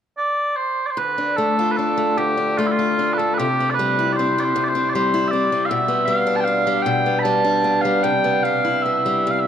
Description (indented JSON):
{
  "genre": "celtic folk, Celtic slow air",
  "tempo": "76 BPM",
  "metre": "3/4",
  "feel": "rubato",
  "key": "D dorian",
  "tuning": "A4 = 440 Hz",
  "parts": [
    { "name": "mellow small bagpipes", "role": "melody", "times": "0.2-9.5 s", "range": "E4 to B5", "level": "-19 LUFS", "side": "right 2 dB", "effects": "none" },
    { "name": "picked steel-string acoustic guitar", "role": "accompaniment", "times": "1.0-9.5 s", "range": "D2 to F4", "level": "-20 LUFS", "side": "left 2 dB", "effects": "none" }
  ],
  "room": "wet cathedral reverb, RT60 7.3 s",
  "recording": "none",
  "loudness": "-17 LUFS",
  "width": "side -9 dB against mid",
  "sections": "1.0-9.5 A section",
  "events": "none",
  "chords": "0.0 N.C.; 1.0 Dm; 3.4 C; 5.7 G/B; 8.0 Cmaj7"
}